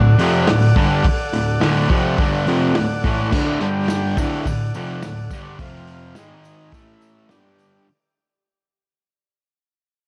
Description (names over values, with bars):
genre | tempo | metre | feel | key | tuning
garage rock duo or trio | 105 BPM | 4/4 | straight | D major | A4 = 440 Hz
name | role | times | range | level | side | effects
combo organ | sustained chords | 0.0-7.9 s | D4 to G5 | -29 LUFS | equal | none
fuzz guitar | riff | 0.0-7.9 s | D2 to A3 | -20 LUFS | equal | distortion
vintage drum kit | drums | 0.2-7.7 s | crash cymbal, hi-hat, kick drum, snare drum | -24 LUFS | equal | none
tambourine | percussion | 3.3-7.7 s | none | -46 LUFS | equal | none
room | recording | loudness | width
light reverb, small room ambience | cassette tape | -18 LUFS | mono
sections
0.0-7.9 A section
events
fade-out 0.0-7.9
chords
0.0 D; 3.6 G5; 4.2 D; 5.6 F5; 6.2 G#5; 6.7 A5; 7.3 G5